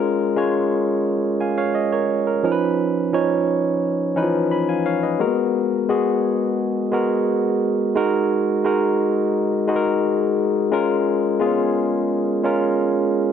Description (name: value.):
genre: soul.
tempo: 87 BPM.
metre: 4/4.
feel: straight.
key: unclear.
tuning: A4 = 439 Hz.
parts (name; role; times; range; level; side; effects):
barky tine electric piano; solo; 0.0-13.3 s; E3 to B5; -18 LUFS; moving between left 5 dB and right 5 dB; overdrive, auto-pan.
room: light reverb, digital ambience.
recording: none.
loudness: -18 LUFS.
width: side -8 dB against mid.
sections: 0.0-13.3 A section.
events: none.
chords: 0.0 A#m7; 2.4 C#9; 5.2 G#m9; 8.0 F#69; 10.7 A#m7.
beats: 0.37 1.06 1.75 | 2.44 3.13 3.82 4.51 | 5.20 5.89 6.58 7.27 | 7.96 8.65 9.34 10.03 | 10.72 11.41 12.10 12.79.